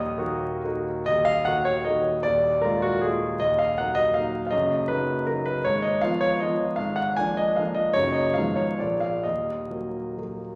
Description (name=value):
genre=classical, romantic triple-time dance for piano with dotted rhythms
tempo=122-170 BPM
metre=3/4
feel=rubato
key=Eb minor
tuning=A4 = 438 Hz
part: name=warm concert grand piano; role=solo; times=0.0-10.6 s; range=Eb1 to Eb6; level=-25 LUFS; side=equal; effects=none
room=wet recital hall reverb, RT60 1.6 s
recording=vinyl crackle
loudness=-25 LUFS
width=mono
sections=0.0-1.1 A section; 1.1-10.6 B section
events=none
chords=0.0 Ebm; 2.2 Bb7/Eb; 3.4 Ebm; 4.5 Ebm/Gb; 5.6 Fm7b5/Ab; 6.8 Bb7/Ab; 7.9 Ebm/Gb; 8.3 Fm7b5/Ab; 8.8 Bb; 9.2 Ebm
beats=0.19 0.65 | 1.08 1.47 1.86 | 2.23 2.63 3.04 | 3.41 3.78 4.15 | 4.51 4.88 5.27 | 5.64 6.01 6.41 | 6.78 7.17 7.57 | 7.94 8.34 8.78 | 9.24 9.71 10.18